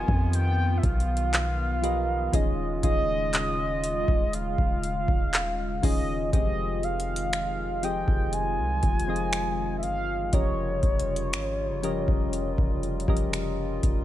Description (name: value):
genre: contemporary R&B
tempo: 60 BPM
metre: 4/4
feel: straight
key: F minor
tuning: A4 = 440 Hz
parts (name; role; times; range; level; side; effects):
- mellow horn-like synth lead; melody; 0.0-13.3 s; Db5 to Ab5; -30 LUFS; equal; chorus
- soft electric-piano-like synth keys; accompaniment; 0.0-14.0 s; Eb3 to D#5; -33 LUFS; left 1 dB; chorus
- hollow soft pad; sustained chords; 0.0-14.0 s; Db3 to F4; -34 LUFS; equal; chorus
- warm 808-style bass; bass; 0.0-14.0 s; Eb1 to F2; -30 LUFS; equal; none
- booming analog drum machine; drums; 0.1-14.0 s; finger snaps, handclaps, hi-hat, kick drum; -26 LUFS; equal; overdrive, vintage 12-bit sampler grit
room: digital ambience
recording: none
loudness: -24 LUFS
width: side -13 dB against mid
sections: 0.0-6.3 A section; 6.3-14.0 B section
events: none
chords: 0.0 G7alt/F; 2.3 Eb9sus4; 6.3 Fm9; 10.3 Eb9/F